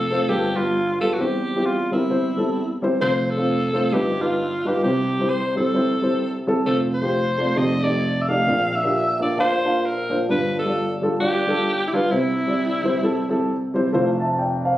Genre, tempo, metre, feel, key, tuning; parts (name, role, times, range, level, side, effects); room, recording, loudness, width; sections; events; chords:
gospel; 132 BPM; 4/4; swing 60% on 8ths; F major; A4 = 440 Hz
growling alto saxophone; melody; 0.0-13.7 s; E4 to F5; -23 LUFS; right 1 dB
dark upright piano; accompaniment; 0.0-14.8 s; F1 to A5; -20 LUFS; equal
moderate large studio reverb, RT60 0.9 s; recorded on a phone in the room, studio reverb, compression; -19 LUFS; side -14 dB against mid
0.0-13.9 A section
0.3 G9; 1.2 C/E; 3.0 F; 3.9 Gaug7; 4.8 C; 6.7 F; 7.6 F13; 8.5 Bb; 10.3 G7; 12.1 C; 13.9 Fmaj7